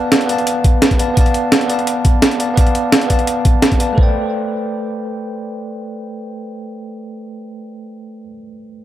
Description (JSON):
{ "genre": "liquid drum and bass", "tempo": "171 BPM", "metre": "4/4", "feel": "straight", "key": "A minor", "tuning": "A4 = 439 Hz", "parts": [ { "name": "bell-like tine electric piano", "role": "accompaniment", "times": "0.0-8.8 s", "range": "A3 to A5", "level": "-20 LUFS", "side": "equal", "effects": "medium stereo tremolo, vintage 12-bit sampler grit, dub echo" }, { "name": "breakbeat sampler-style drum kit", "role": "drums", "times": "0.1-3.9 s", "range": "hi-hat, snare drum", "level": "-15 LUFS", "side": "right 1 dB", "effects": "none" }, { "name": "electronic kick drum", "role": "drums", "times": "0.6-4.0 s", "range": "none", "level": "-13 LUFS", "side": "equal", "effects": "none" } ], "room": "moderate spring reverb, RT60 2.1 s", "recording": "echo-heavy mix", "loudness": "-13 LUFS", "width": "side -13 dB against mid", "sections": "0.0-4.0 A section; 4.0-6.8 B section", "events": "none", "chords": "0.0 Bm7b5; 4.0 Am11" }